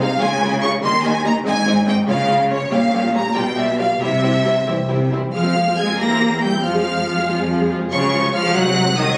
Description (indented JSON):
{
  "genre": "quick classical-period movement for string orchestra",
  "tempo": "94 BPM (dotted quarters)",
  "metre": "6/8",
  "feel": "rubato",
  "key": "F minor",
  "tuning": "A4 = 439 Hz",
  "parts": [
    { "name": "warm symphonic violin section", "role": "melody", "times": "0.0-9.2 s", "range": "Db5 to Bb6", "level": "-23 LUFS", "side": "equal", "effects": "none" },
    { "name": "warm symphonic violin section", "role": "second line", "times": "0.0-9.2 s", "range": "Eb4 to Bb5", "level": "-27 LUFS", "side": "equal", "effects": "none" },
    { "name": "rich symphonic viola section", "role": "accompaniment", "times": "0.0-9.2 s", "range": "F3 to Ab4", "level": "-26 LUFS", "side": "equal", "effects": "none" },
    { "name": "clear symphonic cello section", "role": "bass", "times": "0.0-9.2 s", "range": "Ab2 to Bb3", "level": "-23 LUFS", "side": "equal", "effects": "none" },
    { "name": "warm symphonic double bass section", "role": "bass", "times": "0.0-9.1 s", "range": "Ab1 to F2", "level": "-27 LUFS", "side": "equal", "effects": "none" }
  ],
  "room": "moderate recital hall reverb, RT60 1.3 s",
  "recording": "recorded on a phone in the room, club reverb, compression",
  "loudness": "-18 LUFS",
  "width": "mono",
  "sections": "0.0-5.3 A section; 5.3-9.2 B section",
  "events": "none",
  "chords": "0.2 Db; 0.8 Eb; 1.5 Ab; 2.1 Db; 2.7 Gm7b5/Bb; 3.4 G7/B; 4.0 C; 5.3 Fm; 6.0 C7/E; 6.6 Fm; 7.9 Db; 8.5 Ab7/C",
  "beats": "| 0.21 0.83 | 1.46 2.08 | 2.71 3.36 | 4.01 4.67 | 5.34 5.99 | 6.64 7.28 | 7.92 8.55 | 9.17"
}